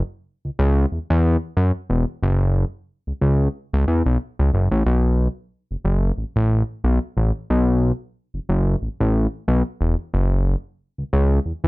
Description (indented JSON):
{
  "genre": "funk",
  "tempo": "91 BPM",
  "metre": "4/4",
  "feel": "swing 56% on 16ths",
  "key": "unclear",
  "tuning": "A4 = 440 Hz",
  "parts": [
    { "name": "fat analog bass", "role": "solo", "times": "0.0-11.7 s", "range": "E1 to F#2", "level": "-18 LUFS", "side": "equal", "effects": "none" }
  ],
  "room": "light reverb",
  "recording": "dark, warm production, nothing above 7.5 kHz",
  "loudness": "-18 LUFS",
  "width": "side -21 dB against mid",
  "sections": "0.0-4.9 A section; 4.9-11.7 B section",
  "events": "none",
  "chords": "none",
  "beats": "0.26 0.92 1.57 | 2.23 2.89 3.54 4.20 | 4.86 5.52 6.18 6.84 | 7.50 8.16 8.81 9.47 | 10.13 10.79 11.45"
}